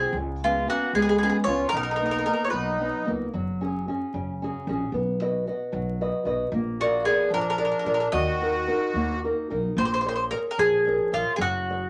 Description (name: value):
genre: italian folk, Italian serenade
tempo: 75 BPM (dotted quarters)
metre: 6/8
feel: rubato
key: Eb minor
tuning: A4 = 437 Hz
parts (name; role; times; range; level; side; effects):
- mandolin; melody; 0.0-3.1, 6.8-11.9 s; F4 to Eb5; -27 LUFS; equal; none
- accordion; second line; 0.0-3.1, 6.8-9.2 s; Ab3 to Gb4; -32 LUFS; equal; light tremolo tuning
- nylon-string guitar; accompaniment; 0.0-11.9 s; B2 to D#5; -29 LUFS; equal; none
- upright bass; bass; 0.0-11.9 s; Gb1 to Bb2; -35 LUFS; equal; none
room: wet studio reverb, RT60 0.5 s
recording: vinyl crackle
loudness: -25 LUFS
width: mono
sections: 0.0-9.8 A section; 9.8-11.9 B section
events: none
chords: 0.1 Db7sus4; 1.7 Bmaj7; 3.3 Gbsus2; 4.9 B; 6.5 Bb7; 8.1 Ebm; 9.8 Bbm7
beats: | 0.14 0.93 | 1.72 2.52 | 3.33 4.14 | 4.94 5.74 | 6.53 7.33 | 8.13 8.95 | 9.77 10.59 | 11.40